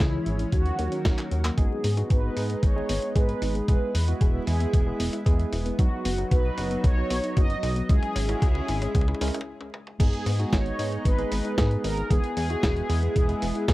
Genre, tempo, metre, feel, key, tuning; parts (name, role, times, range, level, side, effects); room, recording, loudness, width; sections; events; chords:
italo disco; 114 BPM; 4/4; straight; G# minor; A4 = 440 Hz
mellow synth brass; melody; 0.0-13.7 s; E4 to D#5; -32 LUFS; equal; chorus, tape echo
lush unison pad; sustained chords; 0.0-13.7 s; D#3 to F#4; -35 LUFS; left 1 dB; chorus
soft round pluck; arpeggios; 0.0-13.7 s; F#3 to G#4; -37 LUFS; left 3 dB; chorus, tape echo
chorused synth bass; bass; 0.0-13.7 s; D#1 to G#2; -27 LUFS; equal; tube saturation
dusty soul sampler-style drum kit; drums; 0.0-13.7 s; crash cymbal, handclaps, hi-hat, snare drum, toms; -33 LUFS; equal; high-pass filter on hats, high-pass filter on snare, high-pass filter on toms, high-pass filter on cymbals, high-pass filter on room
electronic kick drum; drums; 0.0-13.7 s; -22 LUFS; equal
tine electric piano; stabs; 1.6-13.7 s; F#3 to A#4; -32 LUFS; right 3 dB; medium stereo tremolo, low-pass filter
light reverb; dry, close 1970s-style studio recording, vinyl crackle; -22 LUFS; side -18 dB against mid
0.0-1.6 A section; 1.6-10.0 B section; 10.0-13.7 C section
drum fill 1.2-1.6, 1.6-9.5, 9.6-10.0; band accent 1.4; filter sweep on synth arpeggio sound 1.6-10.0; break 9.5-10.0
0.0 C#m; 0.5 D#m7; 1.6 G#m; 3.7 E; 5.8 B; 7.9 C#m; 10.0 G#m; 12.1 E